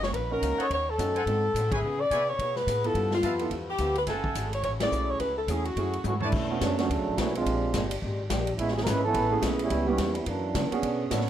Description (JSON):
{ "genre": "jazz, big band swing", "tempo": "213 BPM", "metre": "4/4", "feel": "swing 60% on 8ths", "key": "F# minor", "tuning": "A4 = 438 Hz", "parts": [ { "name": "warm saxophone section", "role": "melody", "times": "0.0-6.2 s", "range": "F4 to D5", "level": "-28 LUFS", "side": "left 1 dB", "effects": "none" }, { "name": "picked swing-style acoustic guitar", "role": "accompaniment", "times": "0.0-11.3 s", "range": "F#2 to C#5", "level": "-37 LUFS", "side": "left 4 dB", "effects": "none" }, { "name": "upright bass", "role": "bass", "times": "0.0-11.3 s", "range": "F#1 to C#3", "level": "-32 LUFS", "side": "equal", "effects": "none" }, { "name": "swinging big-band drum kit", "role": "drums", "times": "0.0-11.3 s", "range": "crash cymbal, hi-hat, kick drum, ride cymbal, snare drum, toms", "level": "-34 LUFS", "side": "equal", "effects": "none" }, { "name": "warm concert grand piano", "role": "accompaniment", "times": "0.3-6.9, 9.3-11.3 s", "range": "G3 to A#4", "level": "-31 LUFS", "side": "right 4 dB", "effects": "none" }, { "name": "clear trumpet section", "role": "stabs", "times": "0.6-6.3 s", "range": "A4 to A5", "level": "-35 LUFS", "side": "right 1 dB", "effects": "none" }, { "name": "clear trombone section", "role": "second line", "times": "6.1-10.7 s", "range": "C#3 to B4", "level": "-28 LUFS", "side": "right 3 dB", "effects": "none" } ], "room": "moderate large studio reverb, RT60 0.8 s", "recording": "none", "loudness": "-25 LUFS", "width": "side -10 dB against mid", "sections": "0.0-6.3 A section; 6.3-11.3 B section", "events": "band accent 1.7, 4.8; drum fill 6.1; trombone section solo 6.3-11.3", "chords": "0.0 Bmaj9; 0.7 D#m7b5; 1.3 G#7b9; 1.8 C#m7; 3.0 G13; 4.1 F#m9; 6.3 Bm9; 7.5 A#13; 8.6 Amaj9; 9.7 C#m7b5; 10.3 F#7b13" }